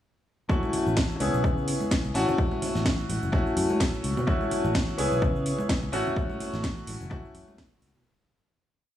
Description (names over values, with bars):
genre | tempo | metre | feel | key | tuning
filtered disco house | 127 BPM | 4/4 | swing 56% on 16ths | A major | A4 = 440 Hz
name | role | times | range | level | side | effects
bright baby grand piano | accompaniment | 0.5-8.0 s | A3 to G#4 | -28 LUFS | left 1 dB | phaser, sidechain pumping
fingered electric bass | bass | 0.5-8.0 s | F#1 to C#3 | -30 LUFS | equal | sidechain pumping
electronic kick drum | drums | 0.5-7.7 s | none | -28 LUFS | equal | none
egg shaker and congas | percussion | 0.5-8.0 s | none | -37 LUFS | right 2 dB | sidechain pumping on perc
house drum kit | drums | 0.7-7.9 s | hi-hat, snare drum | -32 LUFS | equal | sidechain pumping on hats
room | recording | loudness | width
light reverb, studio reverb | small room ambience | -24 LUFS | side -12 dB against mid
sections
0.5-8.1 drop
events
drop 0.5-8.1; fade-out 5.5-8.1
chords
0.5 A6; 1.2 C#m7; 2.1 A6; 3.3 F#m7; 4.3 A6; 5.0 C#m7; 5.9 A6; 7.1 F#m7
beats
| 0.49 0.97 1.44 1.91 | 2.38 2.86 3.33 3.80 | 4.28 4.75 5.22 5.69 | 6.17 6.64 7.11 7.58